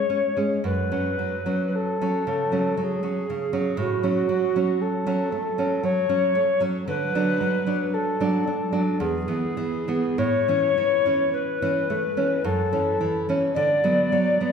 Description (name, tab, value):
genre	romantic duo for recorder and classical guitar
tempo	48-60 BPM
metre	3/4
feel	rubato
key	F# minor, A major from 6.9 s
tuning	A4 = 440 Hz
part	mellow hollow alto recorder	melody	0.0-14.5 s	F#4 to D5	-24 LUFS	left 1 dB	none
part	nylon-string guitar	accompaniment	0.0-14.5 s	E2 to D4	-24 LUFS	right 1 dB	none
room	wet recital hall reverb, RT60 1.8 s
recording	heard from further back in the room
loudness	-21 LUFS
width	side -6 dB against mid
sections	0.0-14.5 A section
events	none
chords	0.0 C#5; 0.6 F#m; 3.8 F#m/A; 6.9 D; 9.0 E; 10.2 A; 12.4 F#m7; 13.6 Bm/D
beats	| 0.65 1.74 2.78 | 3.79 4.82 5.85 | 6.89 7.94 8.99 | 10.18 11.34 12.44 | 13.56